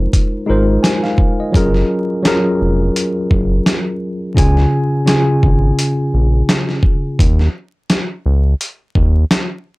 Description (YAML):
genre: hip hop, boom-bap hip-hop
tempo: 85 BPM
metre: 4/4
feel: swing 57% on 16ths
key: unclear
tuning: A4 = 440 Hz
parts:
  - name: tine electric piano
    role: accompaniment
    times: 0.0-7.2 s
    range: Db3 to Ab5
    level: -16 LUFS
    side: equal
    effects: medium stereo tremolo, cassette tape
  - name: round analog bass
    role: bass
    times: 0.0-9.2 s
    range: F1 to Eb2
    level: -14 LUFS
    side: equal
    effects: none
  - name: dusty soul sampler-style drum kit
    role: drums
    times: 0.1-9.5 s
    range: hi-hat, kick drum, snare drum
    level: -15 LUFS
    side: equal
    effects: overdrive
room: little or no reverb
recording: dry, gritty hardware recording, transformer saturation, vinyl crackle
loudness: -13 LUFS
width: side -22 dB against mid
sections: 0.0-9.8 A section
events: none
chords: 0.0 Ab6; 1.5 Gbmaj7; 4.4 Db; 7.2 Dbsus2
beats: 0.13 0.84 | 1.54 2.25 2.96 3.66 | 4.37 5.07 5.78 6.49 | 7.19 7.90 8.60 9.31